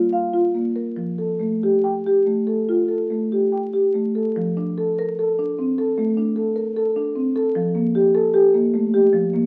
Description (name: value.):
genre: classical, contemporary piece for solo marimba.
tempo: 68-76 BPM.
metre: 4/4.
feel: rubato.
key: F major.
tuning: A4 = 440 Hz.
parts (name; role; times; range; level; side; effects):
marimba with soft mallets; solo; 0.0-9.5 s; F3 to G5; -20 LUFS; equal; none.
room: wet stone room reverb, RT60 1.1 s.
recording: very old 78 rpm record, vinyl crackle.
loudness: -20 LUFS.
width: mono.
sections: 0.0-4.4 A section; 4.4-9.5 B section.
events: none.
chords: 0.0 C7sus4 (rootless); 1.0 Fadd9; 4.4 F6; 7.6 Gm9/F.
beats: 0.12 | 0.95 1.83 2.68 3.52 | 4.37 5.18 5.98 6.77 | 7.56 8.35 9.14.